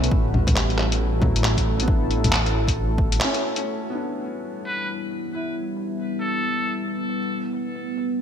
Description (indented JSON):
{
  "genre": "future garage",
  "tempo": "136 BPM",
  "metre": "4/4",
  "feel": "swing 61% on 16ths",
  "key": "E dorian",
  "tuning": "A4 = 440 Hz",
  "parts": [
    { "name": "felt-muted upright piano", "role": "accompaniment", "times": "0.0-7.2 s", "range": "F#3 to E4", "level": "-31 LUFS", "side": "left 1 dB", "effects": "sidechain pumping, ping-pong delay" },
    { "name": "deep dark ambient pad", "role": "sustained chords", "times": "0.0-8.2 s", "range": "G3 to B4", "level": "-27 LUFS", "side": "equal", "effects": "chorus, built-in reverb, sidechain pumping" },
    { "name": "dark detuned saw bass", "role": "bass", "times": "0.0-3.2 s", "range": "A1", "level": "-23 LUFS", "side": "equal", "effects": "sidechain pumping" },
    { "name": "lo-fi sampler-style drum kit", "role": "drums", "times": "0.0-8.0 s", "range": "bongos, handclaps, hi-hat", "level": "-24 LUFS", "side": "left 1 dB", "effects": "low-pass filter on perc, low-pass filter on hats, low-pass filter on snare, gated reverb" },
    { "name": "electronic kick drum", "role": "drums", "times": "0.1-3.1 s", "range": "none", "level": "-23 LUFS", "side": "equal", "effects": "overdrive" },
    { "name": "trumpet with metal mute", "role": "melody", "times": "4.7-6.8 s", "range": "A4 to B4", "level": "-29 LUFS", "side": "equal", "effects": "digital delay" }
  ],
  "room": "light reverb",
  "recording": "bright 1980s-style digital production",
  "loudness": "-21 LUFS",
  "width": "side -8 dB against mid",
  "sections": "0.0-3.6 A section; 3.6-8.2 B section",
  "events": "band accent 3.2; filter sweep on ambient pad 3.6-8.2",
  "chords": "0.1 A7sus4; 3.6 Em7; 7.2 F#madd11/A",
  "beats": "| 0.12 0.56 1.00 1.44 | 1.88 2.32 2.76 3.21 | 3.65 4.09 4.53 4.97 | 5.41 5.85 6.29 6.74 | 7.18 7.62 8.06"
}